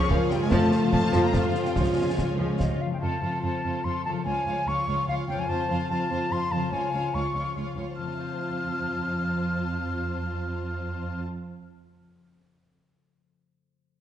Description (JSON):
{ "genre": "cinematic, heroic adventure film score", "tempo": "145 BPM", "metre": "3/4", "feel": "straight", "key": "F major", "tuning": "A4 = 442 Hz", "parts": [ { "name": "bright symphonic violin section", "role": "melody", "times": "0.0-11.2 s", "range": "C5 to Bb5", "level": "-37 LUFS", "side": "left 4 dB", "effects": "none" }, { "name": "rich studio violin section", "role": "second line", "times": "0.0-11.2 s", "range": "F4 to Db5", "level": "-36 LUFS", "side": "left 3 dB", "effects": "none" }, { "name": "rich symphonic viola section", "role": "accompaniment", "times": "0.0-11.2 s", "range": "F3 to F4", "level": "-33 LUFS", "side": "right 2 dB", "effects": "none" }, { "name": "mellow French horn section", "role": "sustained chords", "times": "0.0-3.0 s", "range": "F4 to Bb4", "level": "-33 LUFS", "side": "left 3 dB", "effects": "none" }, { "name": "warm trombone section", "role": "sustained chords", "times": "0.0-2.8 s", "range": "C3 to F3", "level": "-32 LUFS", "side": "right 3 dB", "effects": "none" }, { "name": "concert harp", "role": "arpeggios", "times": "0.0-12.1 s", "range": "F2 to Db6", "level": "-33 LUFS", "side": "left 6 dB", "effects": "none" }, { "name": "dark symphonic cello section", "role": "bass", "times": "0.0-11.2 s", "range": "Db2 to Bb3", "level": "-30 LUFS", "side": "right 2 dB", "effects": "none" }, { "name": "clear symphonic double bass section", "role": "bass", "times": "0.1-2.7 s", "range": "Db2 to F2", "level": "-29 LUFS", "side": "right 2 dB", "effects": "none" }, { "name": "concert bass drum and concert snare drum", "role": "drums", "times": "0.1-2.8 s", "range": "none", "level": "-30 LUFS", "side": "equal", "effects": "none" }, { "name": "silver concert flute", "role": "second line", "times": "2.6-11.2 s", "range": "Eb5 to F6", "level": "-30 LUFS", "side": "left 1 dB", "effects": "none" } ], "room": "moderate scoring stage reverb, RT60 1.8 s", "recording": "dark, warm production, nothing above 11.0 kHz", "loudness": "-24 LUFS", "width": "side -10 dB against mid", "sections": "0.0-3.0 A section; 3.0-8.0 B section; 8.0-10.5 C section", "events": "none", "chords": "0.0 Db; 0.5 F; 1.8 Db; 3.0 F; 4.3 Db; 5.5 F; 6.7 Db; 8.0 F" }